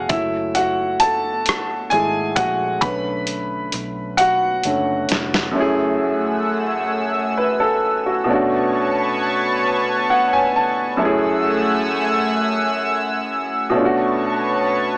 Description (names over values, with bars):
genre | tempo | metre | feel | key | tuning
slow six-eight R&B | 44 BPM (dotted quarters) | 6/8 | straight | F# minor | A4 = 442 Hz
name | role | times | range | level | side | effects
clear baby grand piano | accompaniment | 0.0-15.0 s | F#2 to B5 | -18 LUFS | equal | none
vintage muted fingered electric bass | bass | 0.0-5.5 s | E#1 to B1 | -33 LUFS | equal | none
dusty soul sampler-style drum kit | drums | 0.1-5.5 s | hi-hat, kick drum, rim click, snare drum | -22 LUFS | equal | none
chorused pulse-width pad | sustained chords | 5.6-15.0 s | A3 to E6 | -20 LUFS | equal | none
room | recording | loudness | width
light reverb | small speaker sound | -16 LUFS | side -30 dB against mid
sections
0.0-5.6 A section; 5.6-15.0 B section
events
grand piano solo 0.0-5.6; drum fill 4.2-5.6; grand piano fill 9.6-11.0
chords
0.1 F#m9; 2.8 Bm9; 5.6 F#m9; 8.3 Bm9; 11.0 F#m9; 13.7 Bm9